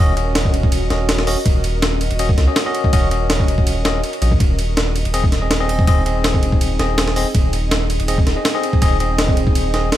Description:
drum and bass, jungle; 163 BPM; 4/4; straight; A4 = 440 Hz
bell-like tine electric piano; stabs; 0.0-9.9 s; C4 to Eb5; -23 LUFS; left 3 dB; medium stereo tremolo, vintage 12-bit sampler grit, dub echo
saturated sub bass; bass; 0.0-9.9 s; Eb1 to Db2; -20 LUFS; equal; tube saturation
breakbeat sampler-style drum kit; drums; 0.2-10.0 s; hi-hat, kick drum, ride cymbal, snare drum; -17 LUFS; equal
digital ambience; -14 LUFS; side -13 dB against mid
0.0-10.0 A section
0.0 Ebm7; 4.4 Ab/Eb

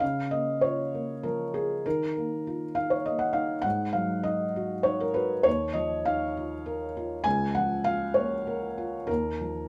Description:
neoclassical minimalist piano; 66 BPM (dotted quarters); 6/8; rubato; Eb minor; A4 = 440 Hz
felt-muted upright piano; solo; 0.0-9.7 s; Db2 to Ab5; -28 LUFS; equal
moderate studio reverb, RT60 0.6 s; -28 LUFS; mono
0.0-9.7 A section
0.0 Bbm/Db; 1.8 Ebsus2; 3.6 Ab5; 5.5 Ebsus2; 7.2 Bbm/Db; 9.1 Ebsus2

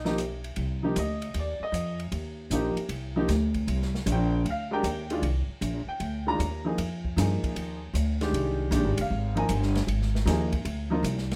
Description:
modal jazz; 155 BPM; 4/4; swing 67% on 8ths; C minor; A4 = 438 Hz
clear upright piano; accompaniment; 0.0-11.0 s; Eb3 to Bb5; -32 LUFS; equal
upright bass; bass; 0.0-11.4 s; F1 to G2; -30 LUFS; equal
open jazz drum kit; drums; 0.1-11.4 s; hi-hat, kick drum, ride cymbal, rim click, snare drum; -40 LUFS; equal
light reverb; -28 LUFS; mono
0.6-11.4 A section
0.0 G7alt; 0.6 Cm9; 6.8 Fm9

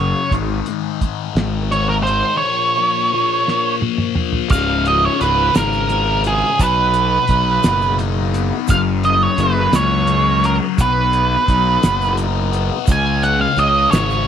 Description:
psychedelic rock; 57 BPM (dotted quarters); 6/8; straight; A4 = 441 Hz
octave-fuzz lead guitar; melody; 0.0-14.3 s; Ab4 to Ab5; -17 LUFS; right 3 dB; distortion, slapback echo
thick fuzz guitar; riff; 0.0-14.3 s; Db2 to Eb4; -21 LUFS; left 13 dB; distortion, phaser
fuzz fingered electric bass; bass; 0.0-14.3 s; Db1 to Db2; -19 LUFS; right 1 dB; overdrive
cloth-damped thuddy drum kit; drums; 0.3-14.1 s; crash cymbal, hi-hat, kick drum, snare drum, toms; -18 LUFS; right 1 dB
egg shaker; percussion; 4.5-14.2 s; -34 LUFS; right 17 dB
light reverb, studio ambience; 1960s-style stereo with parts hard left and right; -14 LUFS; side -8 dB against mid
0.0-4.5 A section; 4.5-14.3 B section
drum fill 3.5-4.5
0.3 Ab5; 2.4 Bbm; 4.5 Db5; 6.6 Cb; 8.7 Gb; 10.8 Cb; 12.9 Db5

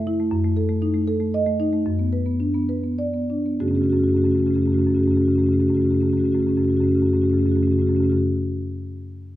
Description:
classical, contemporary piece for solo marimba; 62-82 BPM (dotted quarters); 6/8; rubato; F# minor; A4 = 440 Hz
marimba with soft mallets; solo; 0.0-8.2 s; F#2 to D#5; -18 LUFS; equal
moderate recital hall reverb, RT60 1.5 s; dark, warm production; -18 LUFS; side -14 dB against mid
0.0-3.6 A section; 3.6-7.2 B section
slowing down 0.0-3.6
0.3 F#m6; 1.9 D6/F#; 3.6 F#madd9

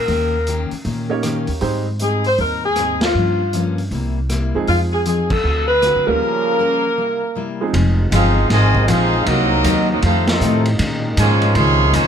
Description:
jazz, big band swing; 157 BPM; 4/4; swing 65% on 8ths; F minor; A4 = 439 Hz
dark saxophone section; melody; 0.0-7.6 s; F4 to C5; -18 LUFS; left 1 dB
upright bass; bass; 0.0-12.1 s; F1 to Bb2; -19 LUFS; right 1 dB
picked steel-string acoustic guitar; accompaniment; 0.1-12.1 s; F2 to Bb4; -24 LUFS; left 5 dB
vintage drum kit; drums; 0.1-12.1 s; crash cymbal, hi-hat, kick drum, ride cymbal, rim click, snare drum; -26 LUFS; equal
clear baby grand piano; accompaniment; 1.1-1.8, 4.5-8.1 s; F3 to Db5; -22 LUFS; right 4 dB
bright trombone section; second line; 6.1-12.1 s; C3 to F4; -23 LUFS; right 2 dB
bright trombone section; sustained chords; 7.7-12.1 s; C3 to Eb4; -27 LUFS; left 1 dB
clear trumpet section; melody; 8.1-12.1 s; C4 to C6; -18 LUFS; right 2 dB
light reverb; close, detailed microphones; -15 LUFS; side -8 dB against mid
0.0-7.7 A section; 7.7-12.1 B section
band accent 3.0, 5.3, 10.2; break 6.2-7.7
0.1 Eb7; 1.6 Abmaj7; 3.1 Gm7b5; 3.9 C7; 4.7 Fm7; 5.4 D7; 6.2 Gm7b5; 7.0 C7; 7.7 Fm7; 9.3 Cm7b5; 10.0 F7; 10.8 Bbm11

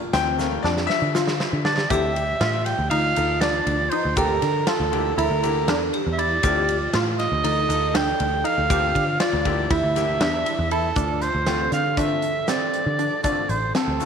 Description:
progressive instrumental, band music in an uneven meter; 238 BPM (eighths); 9/8; straight; D minor; A4 = 440 Hz
vibraphone with hard mallets; second line; 0.0-14.1 s; E4 to A4; -29 LUFS; right 4 dB
bright grand piano; accompaniment; 0.1-14.1 s; D3 to G5; -29 LUFS; left 11 dB
tight sequenced synth; arpeggios; 0.1-14.1 s; C4 to G4; -27 LUFS; equal; chorus
picked electric bass; bass; 0.1-14.0 s; A1 to D3; -26 LUFS; equal
huge arena drum kit; drums; 0.1-14.1 s; hi-hat, kick drum, ride cymbal, snare drum; -27 LUFS; equal
tube shaker; percussion; 0.1-14.1 s; -42 LUFS; right 13 dB
breathy soprano saxophone; melody; 1.6-14.1 s; A4 to G5; -24 LUFS; right 2 dB
moderate echo chamber reverb, RT60 1.8 s, small room ambience; 1960s-style stereo with parts hard left and right; -19 LUFS; side -7 dB against mid
0.0-1.9 A section; 1.9-11.0 B section; 11.0-14.1 C section
grand piano solo 0.0-1.9; drum fill 0.4-1.9
0.0 Gm7/D; 1.9 Fmaj9/D; 2.9 F7/D; 4.2 Bbmaj7/D; 5.2 Gm69/D; 6.4 Fmaj9/D; 7.4 F7/D; 8.7 Bbmaj7/D; 9.7 Gm69/D; 11.0 Dm7

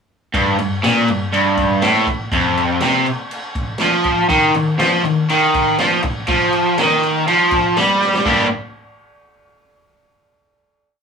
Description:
garage rock duo or trio; 121 BPM; 4/4; straight; G minor; A4 = 440 Hz
crunchy overdriven guitar; riff; 0.3-8.5 s; F2 to G4; -14 LUFS; equal
vintage drum kit; drums; 0.3-8.4 s; crash cymbal, kick drum, snare drum; -24 LUFS; equal
moderate studio reverb, RT60 0.5 s; rough rehearsal-room recording, tube saturation; -14 LUFS; side -6 dB against mid
0.3-8.3 riff; 8.3-10.2 final chord
drum fill 8.0
0.3 N.C.; 4.3 Ebsus2; 8.3 Gm

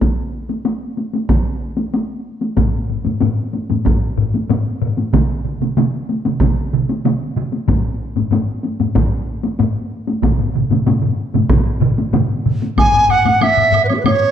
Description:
japanese traditional, taiko drum ensemble; 94 BPM; 4/4; straight; A4 = 440 Hz
solo taiko drums; percussion; 0.0-12.9 s; -18 LUFS; right 1 dB
taiko ensemble; percussion; 0.0-14.2 s; -20 LUFS; left 2 dB
taiko ensemble; percussion; 2.6-14.2 s; -19 LUFS; left 5 dB
taiko ensemble; percussion; 5.1-12.6 s; -19 LUFS; right 6 dB
large dizi; melody; 12.8-14.3 s; F#4 to G#5; -12 LUFS; right 2 dB
woodblock; percussion; 12.8-14.2 s; -24 LUFS; right 2 dB
wet recital hall reverb, RT60 1.6 s; dark, warm production; -15 LUFS; side -9 dB against mid
0.0-12.8 A section; 12.8-14.3 B section

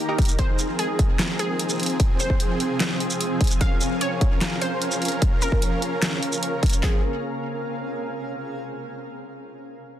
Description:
heavy wobble dubstep; 149 BPM; 4/4; half-time; F minor; A4 = 440 Hz
wide unison pluck; melody; 0.0-7.0 s; Ab4 to G5; -30 LUFS; equal; digital delay
supersaw chords; sustained chords; 0.0-7.0 s; Eb3 to Bb4; -29 LUFS; right 1 dB; sidechain pumping
granular cloud pad; texture; 0.0-8.4 s; C4 to Bb5; -29 LUFS; equal; built-in reverb, sidechain pumping
dubstep drum kit; drums; 0.2-6.9 s; handclaps, kick drum; -20 LUFS; equal; overdrive
dubstep drum kit; drums; 0.2-6.8 s; handclaps, hi-hat, shaker, snare drum; -26 LUFS; equal; overdrive
light reverb, digital ambience; dense, heavily limited modern master; -21 LUFS; side -11 dB against mid
0.0-6.8 A section; 6.8-8.4 B section
0.4 Fm; 3.6 Bbm; 6.8 Fm

